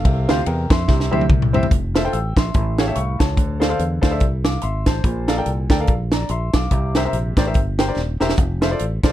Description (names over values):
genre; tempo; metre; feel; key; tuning
uptempo gospel; 144 BPM; 4/4; swing 58% on 8ths; F major; A4 = 440 Hz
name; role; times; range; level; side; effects
clear baby grand piano; accompaniment; 0.0-9.1 s; A2 to E6; -23 LUFS; left 2 dB; none
fingered electric bass; bass; 0.0-9.1 s; Eb1 to F2; -22 LUFS; equal; none
tight funk drum kit; drums; 0.1-9.1 s; hi-hat, kick drum, ride cymbal, snare drum, toms; -18 LUFS; equal; none
room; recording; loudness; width
little or no reverb; dark, warm production; -16 LUFS; side -13 dB against mid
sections
0.0-1.7 A section; 1.7-9.1 B section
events
drum fill 0.9-1.7, 8.0-8.4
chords
0.1 Csus4; 0.9 C; 1.7 Fmaj7; 2.5 A7b13; 3.4 Dm7; 5.0 Bbmaj7; 6.7 C7; 8.4 F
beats
| 0.05 0.46 0.88 1.29 | 1.71 2.12 2.54 2.96 | 3.37 3.79 4.21 4.62 | 5.04 5.46 5.88 6.29 | 6.71 7.13 7.54 7.96 | 8.38 8.79